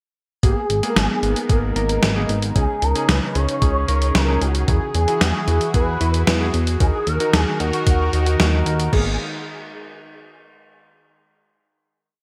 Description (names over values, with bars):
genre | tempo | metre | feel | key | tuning
synthwave | 113 BPM | 4/4 | straight | G# minor | A4 = 440 Hz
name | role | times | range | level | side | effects
expressive synth lead | melody | 0.4-9.2 s | F#4 to C#5 | -27 LUFS | equal | ensemble chorus, digital delay
phased analog pad | sustained chords | 0.8-9.2 s | C#3 to A#4 | -30 LUFS | equal | phaser, chorus
warm electric grand piano | stabs | 0.4-9.1 s | A#3 to B4 | -30 LUFS | equal | delay
chorused synth bass | bass | 0.4-9.2 s | G#1 to E2 | -23 LUFS | equal | tube saturation
electronic kick drum | drums | 0.4-9.0 s | none | -21 LUFS | equal | none
gated 80s digital drum machine | drums | 0.4-9.0 s | crash cymbal, hi-hat, snare drum | -25 LUFS | equal | gated reverb, gated reverb snare
room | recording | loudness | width
light reverb | bright 1980s-style digital production | -19 LUFS | mono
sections
0.4-8.9 verse; 8.9-11.1 final chord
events
none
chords
0.4 G#madd9; 2.6 C#sus2; 4.7 Eadd9; 6.8 D#m; 8.9 G#madd9